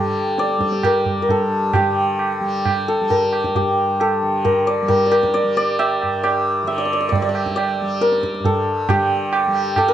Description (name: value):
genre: indian classical, Hindustani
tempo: 134 BPM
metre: 4/4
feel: straight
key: G raga shivaranjani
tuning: A4 = 440 Hz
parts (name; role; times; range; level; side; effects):
- santur; melody; 0.0-9.9 s; G4 to E5; -18 LUFS; left 1 dB; none
- tanpura; drone; 0.0-9.9 s; G2 to G3; -26 LUFS; equal; none
- tabla; percussion; 0.4-9.9 s; none; -22 LUFS; right 5 dB; none
room: light reverb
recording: nothing above 10.3 kHz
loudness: -16 LUFS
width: side -11 dB against mid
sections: 0.0-8.9 A section; 8.9-9.9 B section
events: speeding up 0.0-9.9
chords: none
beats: 0.38 0.83 1.29 | 1.74 2.20 2.65 3.10 | 3.55 4.00 4.45 4.90 | 5.34 5.79 6.24 6.68 | 7.12 7.57 8.01 8.45 | 8.89 9.33 9.77